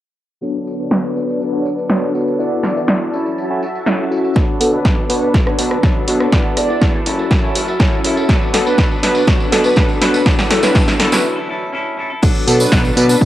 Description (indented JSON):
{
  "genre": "filtered disco house",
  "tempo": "122 BPM",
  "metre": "4/4",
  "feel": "straight",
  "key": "B minor",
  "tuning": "A4 = 439 Hz",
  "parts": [
    { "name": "tine electric piano", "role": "accompaniment", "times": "0.4-13.3 s", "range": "B3 to D5", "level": "-21 LUFS", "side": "left 1 dB", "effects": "fast stereo tremolo, phaser, sidechain pumping, low-pass filter, cassette tape" },
    { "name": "string machine, full ensemble", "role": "sustained chords", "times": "0.4-13.3 s", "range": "D4 to A5", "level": "-22 LUFS", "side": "left 1 dB", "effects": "ensemble chorus, sidechain pumping, low-pass filter, cassette tape" },
    { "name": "clean electric guitar", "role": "riff", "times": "0.4-13.3 s", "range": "F#3 to A4", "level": "-26 LUFS", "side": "left 1 dB", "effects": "sidechain pumping, low-pass filter, cassette tape" },
    { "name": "punchy analog drum machine", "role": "drums", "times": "0.4-13.3 s", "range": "crash cymbal, hi-hat, rim click, snare drum, tambourine", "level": "-19 LUFS", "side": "equal", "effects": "sidechain pumping on perc, low-pass filter on perc, low-pass filter on snare, sidechain pumping on hats, low-pass filter on hats, sidechain pumping on cymbals, low-pass filter on cymbals, low-pass filter on room" },
    { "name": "fat analog bass", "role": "bass", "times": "4.4-13.3 s", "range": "E1 to B2", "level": "-20 LUFS", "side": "equal", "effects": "sidechain pumping, high-pass filter, low-pass filter" },
    { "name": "electronic kick drum", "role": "drums", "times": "4.4-13.3 s", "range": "none", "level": "-14 LUFS", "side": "equal", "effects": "none" },
    { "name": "tambourine", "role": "percussion", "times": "4.4-13.3 s", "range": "none", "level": "-29 LUFS", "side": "right 1 dB", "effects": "sidechain pumping on perc, low-pass filter on perc" },
    { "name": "analog synth brass", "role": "melody", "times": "4.6-13.2 s", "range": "A4 to D5", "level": "-19 LUFS", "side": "right 1 dB", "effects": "chorus, sidechain pumping, low-pass filter, cassette tape" }
  ],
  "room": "light reverb",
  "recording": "home recording on cassette",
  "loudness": "-13 LUFS",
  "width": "side -13 dB against mid",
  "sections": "0.4-4.4 A section; 4.4-12.2 B section; 12.2-13.3 C section",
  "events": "filter sweep 0.4-4.4, 4.4-12.2; build-up 4.4-12.2; drum fill 4.4-11.2; filter sweep on analog polysynth 4.4-12.2; break 11.2-12.2; drop 12.2-13.3",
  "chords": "0.4 Bm7; 2.4 E7sus4; 3.1 F#m7; 4.4 Bm7; 6.3 E7sus4; 7.1 F#m7; 8.3 Bm7; 10.3 E7sus4; 11.0 F#m7; 12.2 Bm7"
}